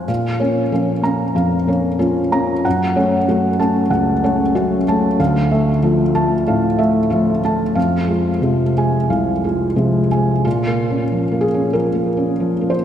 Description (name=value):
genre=neoclassical minimalist piano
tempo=93 BPM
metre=4/4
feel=rubato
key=unclear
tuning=A4 = 440 Hz
part: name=felt-muted upright piano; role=solo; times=0.0-12.8 s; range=C2 to F6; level=-15 LUFS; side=equal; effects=tape echo
room=wet lush hall reverb, RT60 2.8 s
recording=dreamy mix soaked in reverb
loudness=-15 LUFS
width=side -10 dB against mid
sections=0.1-10.5 A section; 10.5-12.8 B section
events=none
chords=0.1 Bbm; 2.7 Gbm; 5.2 Dmadd9; 7.8 Fm; 10.5 Bbm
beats=| 0.09 0.73 1.37 2.02 | 2.65 3.29 3.93 4.56 | 5.19 5.82 6.46 7.11 | 7.77 8.44 9.11 9.78 | 10.45 11.11 11.75 12.40